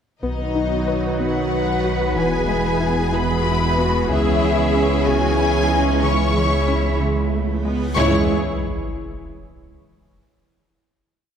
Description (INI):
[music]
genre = cinematic, hybrid orchestral and electronic film score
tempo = 62 BPM (dotted quarters)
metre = 6/8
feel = straight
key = C# minor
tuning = A4 = 442 Hz
[part]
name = warm symphonic violin section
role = melody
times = 0.2-8.3 s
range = D#5 to C#6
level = -25 LUFS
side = left 3 dB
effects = none
[part]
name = warm symphonic violin section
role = second line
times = 0.2-8.3 s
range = D#4 to C#5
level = -28 LUFS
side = left 3 dB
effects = none
[part]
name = warm symphonic viola section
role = accompaniment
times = 0.2-8.3 s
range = F#3 to E4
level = -26 LUFS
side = right 1 dB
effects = none
[part]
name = dark French horn section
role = sustained chords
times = 0.2-8.3 s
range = E3 to G#4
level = -29 LUFS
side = left 2 dB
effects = none
[part]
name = dark trombone section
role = sustained chords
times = 0.2-8.2 s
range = B2 to E3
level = -28 LUFS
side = right 3 dB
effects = none
[part]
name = warm analog pad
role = sustained chords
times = 0.2-8.3 s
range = E3 to C#5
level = -25 LUFS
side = equal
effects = chorus
[part]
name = string-like resonator pluck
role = arpeggios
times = 0.2-7.8 s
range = C#3 to B4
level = -29 LUFS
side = left 3 dB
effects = none
[part]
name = rich symphonic double bass section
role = bass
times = 0.2-8.3 s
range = B1 to E2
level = -26 LUFS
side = right 2 dB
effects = none
[part]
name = sub bass with octave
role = bass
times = 0.2-8.3 s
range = E1 to C#2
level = -26 LUFS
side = equal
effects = none
[part]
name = warm symphonic cello section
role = bass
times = 1.2-8.3 s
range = C#2 to B4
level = -27 LUFS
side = right 2 dB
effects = none
[part]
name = reverse cymbal and sub drop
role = sound effects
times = 7.8-9.9 s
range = none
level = -30 LUFS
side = left 1 dB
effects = none
[sound]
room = wet scoring stage reverb, RT60 2.1 s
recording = heard from further back in the room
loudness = -17 LUFS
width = side -8 dB against mid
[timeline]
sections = 0.2-8.0 theme; 8.0-9.9 final chord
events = reverse cymbal 7.8; impact 8.0-9.9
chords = 0.2 B; 2.2 E; 4.1 C#m